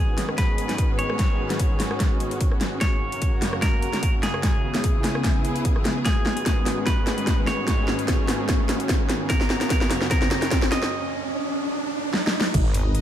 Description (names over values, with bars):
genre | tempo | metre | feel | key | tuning
heavy wobble dubstep | 148 BPM | 4/4 | swing 54% on 16ths, half-time | G# minor | A4 = 439 Hz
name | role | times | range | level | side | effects
clean electric guitar | melody | 0.0-12.5 s | G#4 to D#5 | -31 LUFS | equal | vintage 12-bit sampler grit, ping-pong delay
supersaw pad | sustained chords | 0.0-13.0 s | C#2 to B4 | -31 LUFS | right 1 dB | sidechain pumping
riser and sub drop | sound effects | 3.0-13.0 s | none | -31 LUFS | right 1 dB | none
rich symphonic string section | texture | 0.0-13.0 s | C#3 to D#5 | -31 LUFS | left 2 dB | sidechain pumping
dubstep drum kit | drums | 0.2-13.0 s | crash cymbal, hi-hat, rim click, snare drum | -26 LUFS | equal | studio reverb
electronic kick drum | drums | 0.4-12.6 s | none | -23 LUFS | equal | studio reverb
wobble bass | bass | 12.5-13.0 s | G#1 | -22 LUFS | equal | chorus, overdrive
room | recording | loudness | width
light reverb, digital ambience | none | -20 LUFS | side -11 dB against mid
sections
0.0-12.5 A section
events
build-up 0.0-12.5; drum fill 0.0-10.9, 12.1-12.5; riser 3.0-12.5; break 10.9-12.5; impact 12.5-13.0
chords
0.0 G#m; 2.8 F#; 4.4 C#m; 6.1 G#m; 9.3 F#; 10.9 N.C.